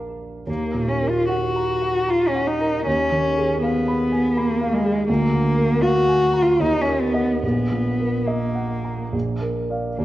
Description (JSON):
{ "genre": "classical, romantic duo for cello and grand piano", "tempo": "69-84 BPM", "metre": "3/4", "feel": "rubato", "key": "Eb minor", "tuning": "A4 = 441 Hz", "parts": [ { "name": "dark baby grand piano", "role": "accompaniment", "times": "0.0-10.0 s", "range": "Bb1 to Cb6", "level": "-23 LUFS", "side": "right 1 dB", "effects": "none" }, { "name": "warm cello", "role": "melody", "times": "0.5-10.0 s", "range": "Ab3 to Gb4", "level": "-20 LUFS", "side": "left 1 dB", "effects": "none" } ], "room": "wet scoring stage reverb, RT60 1.7 s", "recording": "worn, warbling old tape, cassette tape, warbly pitch drift", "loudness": "-18 LUFS", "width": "side -15 dB against mid", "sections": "0.5-10.0 A section", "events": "none", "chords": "0.5 Ebm; 2.9 Fm7b5/Eb; 5.1 Bb7/D; 6.6 Ebm; 7.4 Ebm/Bb; 9.1 Bb" }